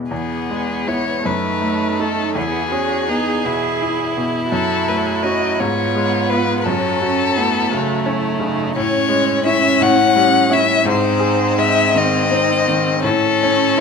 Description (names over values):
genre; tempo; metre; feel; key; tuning
classical, slow romantic movement for piano quartet; 56 BPM (dotted quarters); 6/8; rubato; unclear; A4 = 439 Hz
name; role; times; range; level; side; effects
bright grand piano; accompaniment; 0.0-13.8 s; E2 to A4; -20 LUFS; left 1 dB; none
rich violin; melody; 0.1-13.8 s; G#4 to F#5; -18 LUFS; left 6 dB; none
rich violin; second line; 0.1-13.8 s; A3 to E4; -22 LUFS; left 1 dB; none
rich cello; second line; 1.3-13.8 s; B#3 to G#4; -23 LUFS; right 12 dB; none
room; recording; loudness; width
light reverb; close, detailed microphones; -15 LUFS; side -5 dB against mid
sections
0.1-13.8 A section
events
none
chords
0.1 E; 1.3 D#dim/F#; 2.4 E; 4.5 F#m; 5.6 Fdim/Ab; 6.7 F#m; 8.8 Amaj7; 9.8 A7; 10.9 G#; 13.0 A